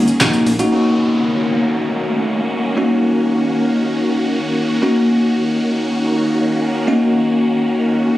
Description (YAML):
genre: dance-pop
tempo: free time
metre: none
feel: none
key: Eb minor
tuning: A4 = 441 Hz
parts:
  - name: supersaw chords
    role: sustained chords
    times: 0.0-8.2 s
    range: Eb3 to Ab4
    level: -20 LUFS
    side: equal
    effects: phaser, sidechain pumping
  - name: plucky analog bass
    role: bass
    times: 0.0-0.6 s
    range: Ab1 to Bb1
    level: -19 LUFS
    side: equal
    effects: sidechain pumping
  - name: smooth R&B drum kit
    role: drums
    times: 0.1-0.7 s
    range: handclaps, hi-hat, kick drum, shaker, snare drum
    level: -18 LUFS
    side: equal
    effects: overdrive
  - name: bell-like tine electric piano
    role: accompaniment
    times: 0.2-8.2 s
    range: Bb3 to Gb4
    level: -16 LUFS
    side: left 1 dB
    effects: phaser
  - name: downlifter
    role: sound effects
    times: 0.7-4.8 s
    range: none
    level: -25 LUFS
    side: right 1 dB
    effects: none
room: moderate lush hall reverb, RT60 1.6 s, digital ambience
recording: recorded on a phone in the room, studio reverb, compression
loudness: -14 LUFS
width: side -15 dB against mid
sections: 0.7-8.2 A section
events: none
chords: 0.0 Gb6; 0.7 Ebm7